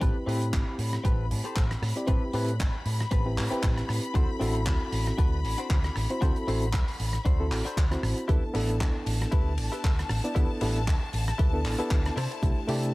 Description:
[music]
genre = nu-disco, nu disco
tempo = 116 BPM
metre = 4/4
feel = swing 56% on 16ths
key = A dorian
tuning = A4 = 440 Hz
[part]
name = reed electric piano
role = accompaniment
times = 0.0-12.9 s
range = A3 to B5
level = -33 LUFS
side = equal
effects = overdrive, fast tremolo, sidechain pumping, analog delay
[part]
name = clear studio string section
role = sustained chords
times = 0.0-12.9 s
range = A5 to B5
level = -38 LUFS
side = left 4 dB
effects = sidechain pumping
[part]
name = direct-recorded clean electric guitar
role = riff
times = 0.0-12.9 s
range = C4 to D5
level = -37 LUFS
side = left 3 dB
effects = wide subtle chorus, vintage 12-bit sampler grit, analog delay
[part]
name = picked electric bass with an envelope filter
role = bass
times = 0.0-12.9 s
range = A1 to C3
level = -29 LUFS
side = equal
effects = tube saturation
[part]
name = damped 70s drum kit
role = drums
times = 0.0-12.9 s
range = handclaps, hi-hat, ride cymbal, rim click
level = -36 LUFS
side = right 1 dB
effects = small room ambience
[part]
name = electronic kick drum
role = drums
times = 0.0-12.5 s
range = none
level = -26 LUFS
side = equal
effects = small room ambience
[sound]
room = small room ambience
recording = dry, gritty hardware recording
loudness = -25 LUFS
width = side -20 dB against mid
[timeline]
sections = 0.0-12.9 A section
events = drop 0.0-12.9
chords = 0.0 Am9; 4.2 D7; 8.3 G69; 12.2 C69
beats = | 0.01 0.53 1.05 1.56 | 2.08 2.60 3.12 3.63 | 4.15 4.67 5.18 5.70 | 6.22 6.74 7.25 7.77 | 8.29 8.81 9.32 9.84 | 10.36 10.88 11.39 11.91 | 12.43

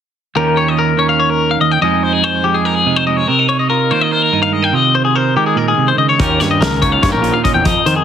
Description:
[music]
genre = math rock and midwest emo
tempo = 288 BPM (eighths)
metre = 7/8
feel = straight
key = unclear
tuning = A4 = 441 Hz
[part]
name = clean electric guitar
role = accompaniment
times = 0.4-8.0 s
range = Eb2 to Bb4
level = -16 LUFS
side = right 7 dB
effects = spring reverb
[part]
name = twangy electric guitar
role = arpeggios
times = 0.4-8.0 s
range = G4 to G5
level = -14 LUFS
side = left 6 dB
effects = spring reverb, plate reverb
[part]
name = fuzz picked electric bass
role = bass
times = 6.2-7.9 s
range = Bb1 to Eb3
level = -18 LUFS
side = left 1 dB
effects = overdrive
[part]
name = loose indie drum kit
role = drums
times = 6.2-8.0 s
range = hi-hat, kick drum, snare drum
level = -18 LUFS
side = equal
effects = none
[sound]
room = moderate small room reverb, RT60 0.5 s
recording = heavily compressed radio sound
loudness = -11 LUFS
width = side -8 dB against mid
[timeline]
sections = 0.4-8.0 A section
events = none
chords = 0.4 Eb9; 1.8 Fm7; 3.3 Cm7; 4.7 Ab6/C; 6.2 Eb9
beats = | 0.37 0.57 0.78 0.99 1.20 1.41 1.61 | 1.82 2.03 2.24 2.45 2.66 2.86 3.07 | 3.28 3.49 3.70 3.90 4.11 4.32 4.53 | 4.74 4.95 5.15 5.36 5.57 5.78 5.99 | 6.20 6.40 6.61 6.82 7.03 7.24 7.44 | 7.65 7.86

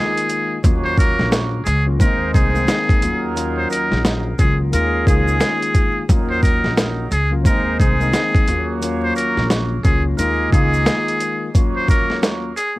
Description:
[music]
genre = hip hop, boom-bap hip-hop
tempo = 88 BPM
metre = 4/4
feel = swing 61% on 16ths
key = Eb dorian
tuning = A4 = 441 Hz
[part]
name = trumpet with metal mute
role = melody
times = 0.0-12.8 s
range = Ab4 to C5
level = -21 LUFS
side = equal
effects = high-pass filter, low-pass filter, cassette tape, analog delay
[part]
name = mellow tine electric piano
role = accompaniment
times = 0.0-12.8 s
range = Eb2 to F4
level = -24 LUFS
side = left 4 dB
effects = high-pass filter, low-pass filter, cassette tape
[part]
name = dark trumpet section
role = stabs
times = 0.0-12.5 s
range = Gb3 to Eb5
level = -28 LUFS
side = right 6 dB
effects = high-pass filter, low-pass filter, cassette tape, analog delay
[part]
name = dusty soul sampler-style drum kit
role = drums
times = 0.2-12.8 s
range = hi-hat, kick drum, snare drum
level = -17 LUFS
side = equal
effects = overdrive, cassette tape
[part]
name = tube shaker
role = percussion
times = 0.3-12.8 s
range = none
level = -40 LUFS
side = right 8 dB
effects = none
[part]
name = upright bass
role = bass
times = 0.6-10.8 s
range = Bb1 to Eb2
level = -21 LUFS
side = equal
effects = tube saturation
[sound]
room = little or no reverb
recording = home recording on cassette, vinyl crackle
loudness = -15 LUFS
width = side -19 dB against mid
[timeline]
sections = 0.0-12.8 A section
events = none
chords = 0.0 Db6 (rootless); 0.6 Ebm7; 2.0 Abadd9; 3.0 Ebm7; 4.7 Db6; 6.1 Ebm7; 7.5 Abadd9; 8.5 Ebm7; 10.2 Db6; 11.5 Ebm7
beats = | 0.64 1.32 2.00 2.68 | 3.37 4.05 4.73 5.41 | 6.09 6.78 7.46 8.14 | 8.82 9.50 10.18 10.87 | 11.55 12.23

